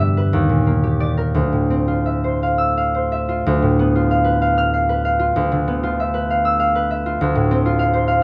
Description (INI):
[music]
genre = classical, solo harp piece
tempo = 56-69 BPM (dotted quarters)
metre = 6/8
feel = rubato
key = D dorian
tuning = A4 = 440 Hz
[part]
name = concert harp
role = solo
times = 0.0-8.2 s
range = D2 to F6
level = -18 LUFS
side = equal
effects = none
[sound]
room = light reverb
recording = dark, warm production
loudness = -18 LUFS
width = mono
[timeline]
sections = 0.0-3.5 A section; 3.5-8.2 A section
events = none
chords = 0.3 Ebmaj7; 1.4 Dm9; 3.5 Dm6; 5.3 Dm69; 7.2 Dm7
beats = 0.33 | 1.36 2.42 | 3.45 4.40 | 5.34 6.28 | 7.19 8.08